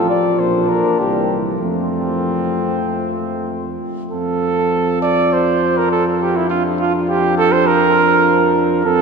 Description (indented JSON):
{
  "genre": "classical, brass quintet",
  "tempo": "99 BPM",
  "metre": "4/4",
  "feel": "uneven beats",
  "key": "F major",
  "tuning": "A4 = 440 Hz",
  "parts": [
    { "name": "mellow cornet", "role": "melody", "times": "0.0-9.0 s", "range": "F4 to F5", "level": "-24 LUFS", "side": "left 5 dB", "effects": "none" },
    { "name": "warm trumpet", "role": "second line", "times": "0.0-9.0 s", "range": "C4 to D5", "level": "-17 LUFS", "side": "right 4 dB", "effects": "none" },
    { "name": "dark French horn", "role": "accompaniment", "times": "0.0-9.0 s", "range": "A3 to D4", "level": "-23 LUFS", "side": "left 4 dB", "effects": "none" },
    { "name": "mellow trombone", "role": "accompaniment", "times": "0.0-9.0 s", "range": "E3 to F3", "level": "-23 LUFS", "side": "right 1 dB", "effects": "none" },
    { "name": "dark bass trombone", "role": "bass", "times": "0.0-9.0 s", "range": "A1 to F2", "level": "-23 LUFS", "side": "left 1 dB", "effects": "none" }
  ],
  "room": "wet cathedral reverb, RT60 6.3 s",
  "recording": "none",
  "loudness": "-14 LUFS",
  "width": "side -5 dB against mid",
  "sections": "0.0-4.1 A section; 4.1-9.0 A section",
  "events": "none",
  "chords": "0.4 Bb; 1.0 C7; 1.6 F; 6.5 Bb/F",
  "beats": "0.40 1.00 | 1.62 2.25 2.87 3.50 | 4.12 4.72 5.32 5.91 | 6.51 7.10 7.69 8.28 | 8.87"
}